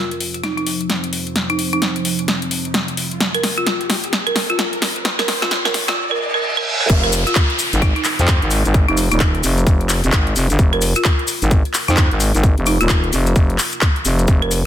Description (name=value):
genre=bass house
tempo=130 BPM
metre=4/4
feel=swing 61% on 16ths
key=F minor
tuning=A4 = 440 Hz
part: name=dark analog pad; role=sustained chords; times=0.0-14.7 s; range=F3 to C5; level=-29 LUFS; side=right 1 dB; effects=chorus, phaser, vintage 12-bit sampler grit, sidechain pumping
part: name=riser, reverse cymbal and downlifter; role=sound effects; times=0.0-10.6 s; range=none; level=-25 LUFS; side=right 1 dB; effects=none
part: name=big-room dance drum kit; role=drums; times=0.1-14.6 s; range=crash cymbal, handclaps, hi-hat, snare drum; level=-20 LUFS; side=left 1 dB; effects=studio ambience
part: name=folk marimba with hard mallets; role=melody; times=0.4-14.5 s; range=Eb4 to Bb4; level=-22 LUFS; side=right 1 dB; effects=tape echo
part: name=growling FM bass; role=bass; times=6.9-14.6 s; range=Eb1 to F2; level=-17 LUFS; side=equal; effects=tube saturation, sidechain pumping
part: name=electronic kick drum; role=drums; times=6.9-14.4 s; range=none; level=-15 LUFS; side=equal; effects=studio ambience
part: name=maracas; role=percussion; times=6.9-14.6 s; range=none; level=-25 LUFS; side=left 3 dB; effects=none
room=light reverb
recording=dense, heavily limited modern master, high-pass filter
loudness=-15 LUFS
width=side -10 dB against mid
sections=0.0-6.9 A section; 6.9-14.7 B section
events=build-up 0.0-6.9; drum fill 0.0-6.0; riser 0.0-6.9; filter sweep on analog synth pad 0.0-6.9; reverse cymbal 6.0-6.9; drop 6.9-14.7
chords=0.0 F5